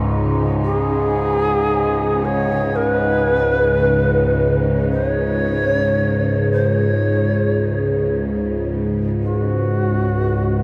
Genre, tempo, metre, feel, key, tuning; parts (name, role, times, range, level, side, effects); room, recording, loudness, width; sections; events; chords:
dark ambient drone; 56 BPM; 4/4; straight; A4 = 440 Hz
dark chamber cello section; sustained chords; 0.0-10.6 s; C#3 to D#4; -28 LUFS; equal
overtone-sweeping drone; drone; 0.0-10.6 s; C#2 to G#2; -21 LUFS; equal; chorus, built-in reverb
bright reedy long shakuhachi; melody; 0.6-10.6 s; F#4 to C#5; -22 LUFS; equal; tape echo
wet cathedral reverb, RT60 5.6 s; in a vast, echoing space; -18 LUFS; mono
0.0-10.6 A section
fade-out on cello section 0.0-10.6
0.0 C#5